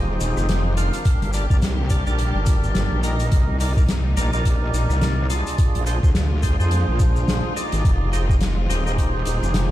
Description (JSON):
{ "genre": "glitch hop", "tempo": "106 BPM", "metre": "4/4", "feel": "swing 58% on 16ths", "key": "F dorian", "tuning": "A4 = 440 Hz", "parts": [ { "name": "bright studio string section", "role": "sustained chords", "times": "0.0-9.7 s", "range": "C3 to G4", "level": "-31 LUFS", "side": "equal", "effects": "vintage 12-bit sampler grit, sidechain pumping" }, { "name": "percussive tonewheel organ", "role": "stabs", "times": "0.0-9.7 s", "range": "D4 to F5", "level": "-27 LUFS", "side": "equal", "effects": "overdrive, slow rotary speaker, sidechain pumping, ping-pong delay" }, { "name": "wobble bass", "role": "bass", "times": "0.0-9.7 s", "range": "Eb1 to F2", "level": "-21 LUFS", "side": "equal", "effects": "chorus, tube saturation" }, { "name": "soft-mallet drum kit", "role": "drums", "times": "0.2-9.7 s", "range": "hi-hat, rim click, snare drum", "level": "-28 LUFS", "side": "left 1 dB", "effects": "none" }, { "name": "tube shaker", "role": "percussion", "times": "0.2-9.7 s", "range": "none", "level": "-38 LUFS", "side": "left 4 dB", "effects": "none" }, { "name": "electronic kick drum", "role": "drums", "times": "1.1-9.1 s", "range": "none", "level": "-19 LUFS", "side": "equal", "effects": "none" } ], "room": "studio ambience", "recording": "played on a big sound system in a bare room, stone room reverb", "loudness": "-18 LUFS", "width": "side -14 dB against mid", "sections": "0.0-9.7 A section", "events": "none", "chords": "0.0 Fm7; 1.1 Gm; 3.3 Cm7; 5.6 Bb7; 7.8 Fm7" }